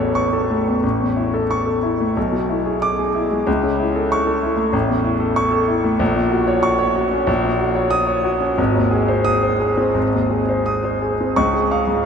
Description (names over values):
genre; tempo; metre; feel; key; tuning
classical, virtuoso piano study; 84-96 BPM; 2/4; rubato; A major; A4 = 441 Hz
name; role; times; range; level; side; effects
clear grand piano; solo; 0.0-12.1 s; Ab1 to Eb6; -16 LUFS; equal; none
room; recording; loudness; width
wet huge ambient reverb, RT60 8.1 s; in a vast, echoing space; -16 LUFS; side -6 dB against mid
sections
0.8-11.4 A section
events
none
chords
0.0 A; 2.2 E7/B; 3.5 A/C#; 4.7 A; 6.0 Gb/Bb; 7.3 Ebm7/Bb; 8.6 Ab; 11.4 Db